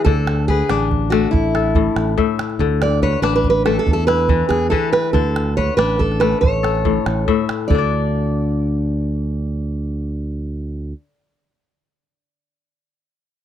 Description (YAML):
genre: west african traditional, West African string and xylophone music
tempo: 94 BPM (dotted quarters)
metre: 12/8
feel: straight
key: unclear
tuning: A4 = 437 Hz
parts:
  - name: fingerpicked steel-string acoustic guitar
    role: melody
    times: 0.0-10.9 s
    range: E4 to D5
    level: -20 LUFS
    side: right 3 dB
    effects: none
  - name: kora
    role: arpeggios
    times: 0.0-11.0 s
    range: A2 to E5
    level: -21 LUFS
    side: left 10 dB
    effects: none
  - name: modern bright fingered electric bass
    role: bass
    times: 0.1-10.9 s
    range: A1 to E2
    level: -20 LUFS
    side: right 1 dB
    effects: none
  - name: calabash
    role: percussion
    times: 0.1-7.9 s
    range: none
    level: -22 LUFS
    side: right 2 dB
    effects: none
room: little or no reverb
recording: dry, close 1970s-style studio recording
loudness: -16 LUFS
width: side -10 dB against mid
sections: 0.0-7.7 A section; 7.7-10.3 B section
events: none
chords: 0.1 D5; 3.9 E5; 5.1 D5; 7.7 N.C.